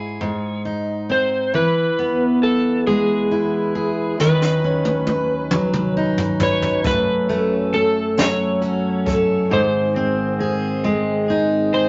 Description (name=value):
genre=six-eight pop ballad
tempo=45 BPM (dotted quarters)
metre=6/8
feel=straight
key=unclear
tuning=A4 = 440 Hz
part: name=electric slide guitar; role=melody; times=0.0-11.9 s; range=G#4 to C#5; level=-24 LUFS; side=equal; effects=none
part: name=picked steel-string acoustic guitar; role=accompaniment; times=0.0-11.9 s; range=F#2 to B4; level=-22 LUFS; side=equal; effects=none
part: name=tonewheel organ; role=sustained chords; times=1.5-11.9 s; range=D#2 to B4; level=-30 LUFS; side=equal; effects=stopped rotary speaker
part: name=jazz brush drum kit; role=drums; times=4.2-9.3 s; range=hi-hat, kick drum, snare drum, toms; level=-26 LUFS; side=equal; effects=none
part: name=twelve-string electric guitar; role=arpeggios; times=6.8-11.9 s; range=D#3 to G#4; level=-30 LUFS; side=equal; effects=none
room=moderate studio reverb, RT60 0.5 s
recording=vinyl crackle, nothing above 7.7 kHz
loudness=-19 LUFS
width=mono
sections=0.0-1.5 A section; 1.5-11.9 B section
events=drum fill 4.2-6.9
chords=0.2 G#; 1.5 E; 4.2 Badd9/D#; 6.9 F#m; 9.5 G#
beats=0.21 | 1.53 2.86 | 4.19 5.52 | 6.85 8.18 | 9.51 10.84